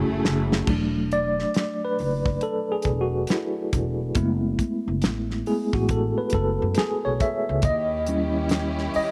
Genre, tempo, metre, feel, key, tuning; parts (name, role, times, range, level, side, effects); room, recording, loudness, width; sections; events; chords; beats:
R&B, neo-soul; 69 BPM; 4/4; swing 62% on 16ths; A4 = 441 Hz
tine electric piano; accompaniment; 0.0-9.1 s; F#3 to E5; -27 LUFS; equal; fast tremolo
clear studio string section; sustained chords; 0.0-0.7, 7.6-9.1 s; D#3 to G#4; -36 LUFS; equal
upright bass; bass; 0.0-9.0 s; E1 to F#2; -30 LUFS; equal
damped 70s drum kit; drums; 0.2-9.1 s; crash cymbal, hi-hat, kick drum, snare drum; -28 LUFS; equal
small room ambience; -24 LUFS; mono
0.7-9.1 A section
drum fill 0.0-0.7; tine electric piano solo 0.7-9.1
0.0 F#m9; 0.7 E7sus4; 4.2 F#m11; 7.6 D#7b9
| 0.68 1.55 2.42 3.29 | 4.16 5.03 5.89 6.76 | 7.63 8.50